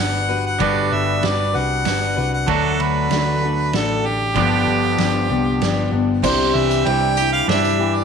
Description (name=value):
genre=folk rock and heartland rock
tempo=96 BPM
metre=3/4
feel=straight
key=G major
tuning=A4 = 442 Hz
part: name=warm harmonica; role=melody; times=0.0-8.0 s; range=G4 to G5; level=-22 LUFS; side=right 1 dB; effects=none
part: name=picked steel-string acoustic guitar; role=accompaniment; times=0.0-8.0 s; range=G2 to B4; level=-22 LUFS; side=left 9 dB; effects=none
part: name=twangy electric guitar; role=riff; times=0.0-8.0 s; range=G2 to G4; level=-24 LUFS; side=right 12 dB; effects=none
part: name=hollow-body short-scale picked electric bass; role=bass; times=0.0-8.0 s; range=G1 to G2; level=-23 LUFS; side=equal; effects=none
part: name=loose indie drum kit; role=drums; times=0.6-7.6 s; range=crash cymbal, kick drum, ride cymbal, snare drum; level=-27 LUFS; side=right 7 dB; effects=none
part: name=warm upright piano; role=accompaniment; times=6.2-8.0 s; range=E4 to E5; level=-27 LUFS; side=right 12 dB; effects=none
part: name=tambourine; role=percussion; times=6.2-8.0 s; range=none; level=-32 LUFS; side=left 15 dB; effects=none
room=light reverb, studio reverb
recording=1960s-style stereo with parts hard left and right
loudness=-16 LUFS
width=side -6 dB against mid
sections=0.0-6.2 A section; 6.2-8.0 B section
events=none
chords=0.0 Gmaj7; 2.5 D; 4.4 G7; 6.2 Cadd9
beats=| 0.61 1.23 1.86 | 2.48 3.11 3.73 | 4.36 4.98 5.61 | 6.24 6.86 7.49